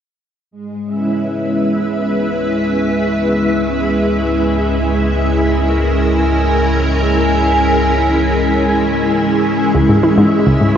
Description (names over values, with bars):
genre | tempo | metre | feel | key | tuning
ambient, sequencer-driven space music | free time | none | none | C# dorian | A4 = 437 Hz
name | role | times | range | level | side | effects
string machine, full ensemble | sustained chords | 0.5-10.8 s | G#3 to E5 | -14 LUFS | equal | ensemble chorus
round analog bass | bass | 0.5-10.8 s | C#2 | -20 LUFS | equal | none
bubbling stepped-filter texture | texture | 0.5-10.8 s | E5 to G#5 | -22 LUFS | right 1 dB | chorus, built-in reverb
analog pluck | riff | 9.7-10.7 s | C#2 to E3 | -12 LUFS | equal | chorus, tape echo
room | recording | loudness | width
wet huge ambient reverb, RT60 7.4 s | nothing above 7.6 kHz | -12 LUFS | side -8 dB against mid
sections
0.5-9.7 A section; 9.7-10.8 B section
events
fade-in on analog synth bass 0.5-9.7; fade-in on synth texture 0.5-9.7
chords
0.5 C#m7; 9.7 C#m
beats
free time